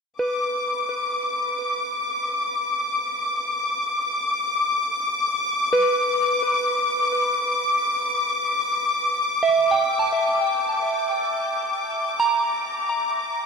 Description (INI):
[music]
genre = ambient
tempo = free time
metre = none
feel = none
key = unclear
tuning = A4 = 440 Hz
[part]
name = soft synth bell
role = arpeggios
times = 0.2-13.5 s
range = B4 to Bb5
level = -24 LUFS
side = right 2 dB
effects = chorus, ping-pong delay
[part]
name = warm studio violin section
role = texture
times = 0.2-13.5 s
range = D6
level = -23 LUFS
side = left 2 dB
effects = none
[sound]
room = wet shimmer reverb, RT60 8.7 s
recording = none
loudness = -21 LUFS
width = side -5 dB against mid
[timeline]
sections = 0.2-13.5 A section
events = fade-in on synth bell 0.2-13.5; fade-out on violin section 0.2-13.5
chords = 0.2 Bm; 5.7 G; 11.3 Gm